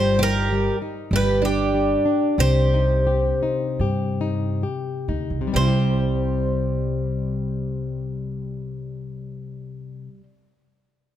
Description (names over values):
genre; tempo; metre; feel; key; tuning
fado-style ballad; 63-102 BPM; 4/4; rubato; unclear; A4 = 441 Hz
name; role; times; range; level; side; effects
Greek bouzouki; melody; 0.0-10.2 s; G4 to C5; -25 LUFS; right 1 dB; none
picked twelve-string acoustic guitar; second line; 0.0-10.2 s; G3 to G4; -28 LUFS; right 2 dB; none
flamenco guitar; accompaniment; 0.0-10.3 s; C3 to G4; -27 LUFS; left 6 dB; none
upright bass; bass; 0.0-10.2 s; G1 to G2; -23 LUFS; right 1 dB; none
room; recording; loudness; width
light reverb; none; -20 LUFS; side -11 dB against mid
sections
0.0-5.5 A section; 5.5-9.3 B section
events
slowing down 0.0-5.5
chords
0.0 Gm; 1.1 G5; 2.4 Cm; 5.5 C